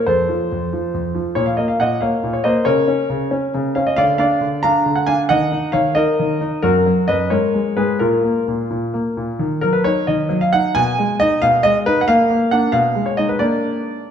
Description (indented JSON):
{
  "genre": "classical-period piano sonatina",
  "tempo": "90 BPM (dotted quarters)",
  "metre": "6/8",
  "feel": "rubato",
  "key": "Bb minor, Eb minor from 4.0 s",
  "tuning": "A4 = 435 Hz",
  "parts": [
    { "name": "clear grand piano", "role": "solo", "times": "0.0-14.1 s", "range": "F2 to Bb5", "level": "-15 LUFS", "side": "equal", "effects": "none" }
  ],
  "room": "wet recital hall reverb, RT60 1.7 s",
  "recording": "dark, warm production",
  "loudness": "-15 LUFS",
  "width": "side -8 dB against mid",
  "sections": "0.0-9.4 A section; 9.4-14.1 B section",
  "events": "none",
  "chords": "0.1 F; 1.4 Bbm; 2.7 Bbm/Db; 4.0 Dm; 5.3 Ebm; 6.6 Gbadd11; 7.3 Absus24; 8.0 Bb5; 8.7 N.C.; 9.4 Ebm; 10.7 Abm/Cb; 12.1 Bb; 12.7 Abm/Cb; 13.4 Bb"
}